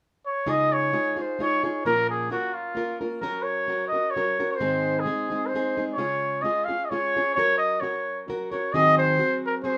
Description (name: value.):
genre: mexican folk, mariachi.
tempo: 131 BPM.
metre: 3/4.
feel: swing 53% on 8ths.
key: Db major.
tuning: A4 = 441 Hz.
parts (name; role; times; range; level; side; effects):
warm trumpet; melody; 0.3-9.8 s; F4 to F5; -26 LUFS; equal; none.
nylon-string guitar; accompaniment; 0.5-9.8 s; Ab2 to Bb4; -31 LUFS; equal; none.
room: wet small room reverb, RT60 0.5 s.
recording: none.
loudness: -25 LUFS.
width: mono.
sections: 0.5-9.8 A section.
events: none.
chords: 0.5 Dbadd9; 1.8 Bbm; 3.2 Gb; 4.6 Ab; 6.0 Db; 7.4 Gb; 8.7 Ab7.